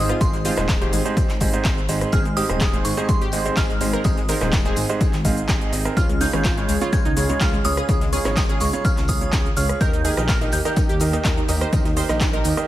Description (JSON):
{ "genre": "progressive house", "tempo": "125 BPM", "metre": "4/4", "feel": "straight", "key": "Ab major", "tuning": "A4 = 439 Hz", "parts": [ { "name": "glassy synth bell", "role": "melody", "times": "0.0-12.7 s", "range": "C6 to Ab6", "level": "-29 LUFS", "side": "right 2 dB", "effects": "chorus, tremolo, sidechain pumping, tape echo" }, { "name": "analog pluck", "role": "arpeggios", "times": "0.0-12.5 s", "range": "Ab3 to C5", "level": "-28 LUFS", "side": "left 2 dB", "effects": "chorus, sidechain pumping, tape echo" }, { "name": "bright baby grand piano", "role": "stabs", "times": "0.0-12.7 s", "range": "Ab2 to F5", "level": "-25 LUFS", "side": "right 4 dB", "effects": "sidechain pumping, tape echo" }, { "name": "dark detuned saw bass", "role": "bass", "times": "0.0-12.5 s", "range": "Eb1 to Eb2", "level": "-25 LUFS", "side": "equal", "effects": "sidechain pumping" }, { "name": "big-room dance drum kit", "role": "drums", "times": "0.1-12.7 s", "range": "handclaps, hi-hat, rim click, shaker", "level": "-28 LUFS", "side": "equal", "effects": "overdrive" }, { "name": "electronic kick drum", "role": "drums", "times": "0.2-12.3 s", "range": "none", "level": "-21 LUFS", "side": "equal", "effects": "overdrive" }, { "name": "loose indie drum kit", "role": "drums", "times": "0.2-12.6 s", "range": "hi-hat, snare drum, tambourine", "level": "-38 LUFS", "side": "equal", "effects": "none" } ], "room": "studio reverb", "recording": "none", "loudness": "-18 LUFS", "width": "side -14 dB against mid", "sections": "0.0-12.7 A section", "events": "none", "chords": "0.0 Ab; 6.0 Db; 9.8 Eb" }